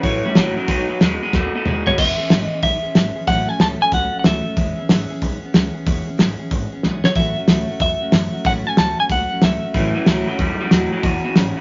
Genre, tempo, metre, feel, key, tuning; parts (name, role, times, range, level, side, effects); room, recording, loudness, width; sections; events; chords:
rockabilly; 185 BPM; 4/4; swing 65% on 8ths; E major; A4 = 439 Hz
clean electric guitar; melody; 0.0-10.4 s; C#5 to A5; -24 LUFS; equal; harmonic tremolo
picked steel-string acoustic guitar; accompaniment; 0.0-11.6 s; A2 to A4; -27 LUFS; equal
electric guitar through a small old amp; riff; 0.0-2.0, 9.7-11.6 s; E2 to A3; -24 LUFS; equal
upright bass; bass; 0.0-11.6 s; E1 to F#2; -32 LUFS; equal
cloth-damped thuddy drum kit; drums; 0.0-11.5 s; crash cymbal, hi-hat, kick drum, snare drum, toms; -19 LUFS; equal
moderate studio reverb, RT60 0.6 s; vinyl crackle, nothing above 7.5 kHz; -18 LUFS; mono
0.0-2.0 A section; 2.0-11.6 A section
drum fill 1.3-2.0, 6.8-7.2
0.0 A6; 0.7 B6; 2.0 E6; 3.3 A6; 4.6 E6; 7.2 A6; 11.0 E6